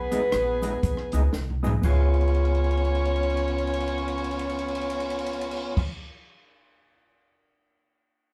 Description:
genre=ska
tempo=119 BPM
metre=4/4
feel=swing 60% on 8ths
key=Db mixolydian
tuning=A4 = 440 Hz
part: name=warm horn section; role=melody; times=0.0-5.8 s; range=Cb4 to Db5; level=-31 LUFS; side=equal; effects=none
part: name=upright bass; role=bass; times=0.0-5.8 s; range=Bb1 to Db2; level=-28 LUFS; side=equal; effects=none
part: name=mellow electric guitar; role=accompaniment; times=0.1-5.9 s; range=Cb4 to Ab4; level=-36 LUFS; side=equal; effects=none
part: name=percussive tonewheel organ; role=stabs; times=0.1-5.8 s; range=Ab3 to F4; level=-35 LUFS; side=equal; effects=overdrive, chorus vibrato, stopped rotary speaker
part: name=compact cocktail drum kit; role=drums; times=0.1-7.3 s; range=crash cymbal, hi-hat, kick drum, ride cymbal, rim click, snare drum, toms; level=-34 LUFS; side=equal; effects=none
part: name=cabasa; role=percussion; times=0.1-5.8 s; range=none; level=-53 LUFS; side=equal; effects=tape echo
room=wet studio reverb, RT60 0.6 s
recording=band playing live in one room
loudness=-25 LUFS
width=mono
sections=0.0-1.8 A section; 1.8-5.9 B section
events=drum fill 1.3-1.8, 2.1-5.7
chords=0.0 Cb6; 1.8 Db7

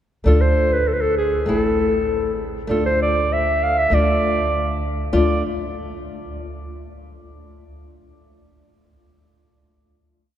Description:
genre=klezmer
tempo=98 BPM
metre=2/4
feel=straight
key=D minor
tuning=A4 = 440 Hz
part: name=flamenco guitar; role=accompaniment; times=0.2-5.4 s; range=A3 to F4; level=-24 LUFS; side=left 3 dB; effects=none
part: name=mellow clarinet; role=melody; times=0.3-5.4 s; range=G#4 to F5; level=-20 LUFS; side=right 1 dB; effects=none
part: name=upright bass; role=bass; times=0.3-5.4 s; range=A1 to D2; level=-23 LUFS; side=equal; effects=none
room=wet cathedral reverb, RT60 5.4 s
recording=recorded in a church or concert hall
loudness=-17 LUFS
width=side -10 dB against mid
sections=0.3-5.1 A section; 5.1-6.4 final chord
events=none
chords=0.3 Dm; 1.5 Am; 2.7 Dm

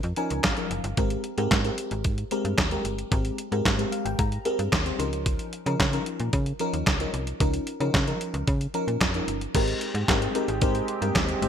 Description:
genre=early-eighties boogie funk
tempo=112 BPM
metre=4/4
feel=straight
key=Ab major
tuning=A4 = 440 Hz
part: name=slap-like FM bass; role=bass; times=0.0-11.5 s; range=Gb1 to Db3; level=-28 LUFS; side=equal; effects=none
part: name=detuned 8-bit digital drum machine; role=drums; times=0.0-11.5 s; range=crash cymbal, handclaps, hi-hat, kick drum, snare drum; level=-26 LUFS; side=equal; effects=gated reverb
part: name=FM electric piano with soft pad layer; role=accompaniment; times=0.2-11.5 s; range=F3 to C6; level=-29 LUFS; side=left 1 dB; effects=chorus, phaser
part: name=chorused pulse-width pad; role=sustained chords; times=9.5-11.5 s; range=Ab3 to G4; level=-32 LUFS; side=right 2 dB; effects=none
room=light reverb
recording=bright 1980s-style digital production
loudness=-23 LUFS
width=side -8 dB against mid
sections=0.0-9.5 A section; 9.5-11.5 B section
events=FM electric piano fill 0.0-1.0, 3.7-5.3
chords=0.0 Db69; 1.0 Abmaj9; 5.0 Db69; 9.5 Abmaj9

